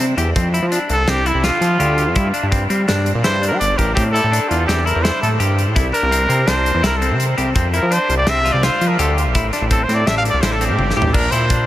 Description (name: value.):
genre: progressive instrumental, band music in an uneven meter.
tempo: 167 BPM.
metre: 5/4.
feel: straight.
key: A phrygian.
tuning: A4 = 440 Hz.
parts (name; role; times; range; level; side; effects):
clean electric guitar; arpeggios; 0.0-11.7 s; C4 to G4; -22 LUFS; left 2 dB; tape echo.
fat analog bass; bass; 0.0-11.7 s; G1 to G3; -18 LUFS; equal; none.
modern studio drum kit; drums; 0.0-11.6 s; crash cymbal, hi-hat, kick drum, snare drum, toms; -22 LUFS; equal; none.
bright trumpet; melody; 0.9-11.7 s; E4 to F5; -19 LUFS; equal; tape echo.
room: moderate huge ambient reverb, RT60 5.1 s.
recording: dreamy mix soaked in reverb.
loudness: -14 LUFS.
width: side -14 dB against mid.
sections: 0.0-11.1 A section.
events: trumpet solo 0.0-11.1; drum fill 10.8-11.1.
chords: 0.4 Fsus2; 2.2 G5; 4.0 Am7; 5.8 C7; 7.6 Fsus2; 9.3 Am7; 11.1 Bb.